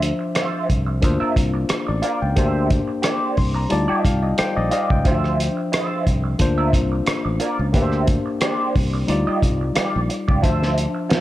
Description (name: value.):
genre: lush 1970s-style soul.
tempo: 89 BPM.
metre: 4/4.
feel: swing 54% on 16ths.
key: D minor.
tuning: A4 = 440 Hz.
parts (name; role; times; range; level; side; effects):
barky tine electric piano; accompaniment; 0.0-11.2 s; E3 to C6; -23 LUFS; left 3 dB; overdrive.
overdriven fingered electric bass; bass; 0.0-10.9 s; A1 to D2; -22 LUFS; equal; none.
cloth-damped thuddy drum kit; drums; 0.0-11.2 s; hi-hat, kick drum, rim click, snare drum; -21 LUFS; equal; none.
celesta; texture; 0.0-0.2, 10.4-11.2 s; A5 to Bb5; -35 LUFS; left 11 dB; none.
electric guitar through a small old amp; riff; 0.2-11.2 s; F4 to E5; -26 LUFS; right 3 dB; wah.
room: light reverb, small room reverb.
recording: dark, warm production.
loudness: -18 LUFS.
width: side -15 dB against mid.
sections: 0.0-11.2 A section.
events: tine electric piano fill 3.0-5.1.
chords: 0.0 Dm9; 1.0 C9sus4; 2.4 Bb69/D; 3.7 Ebmaj9; 5.1 Dm9; 6.4 C9sus4; 7.7 Bb69/D; 9.1 Ebmaj9; 10.4 Dm9.